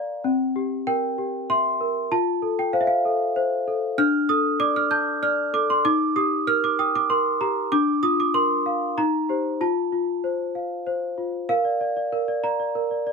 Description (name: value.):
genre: classical, lullaby for celesta.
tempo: 96 BPM.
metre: 3/4.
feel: straight.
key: F major, Bb major from 4.0 s.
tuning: A4 = 441 Hz.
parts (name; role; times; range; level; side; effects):
worn celesta; solo; 0.0-13.1 s; C4 to G6; -21 LUFS; equal; none.
room: little or no reverb.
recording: close, detailed microphones.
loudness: -20 LUFS.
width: side -4 dB against mid.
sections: 0.0-11.5 A section; 11.5-13.1 B section.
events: none.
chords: 0.2 C7; 2.1 F; 4.0 D5; 5.8 Eb; 7.7 Bb/D; 9.0 Cm7/Eb; 9.6 F; 11.5 Bb.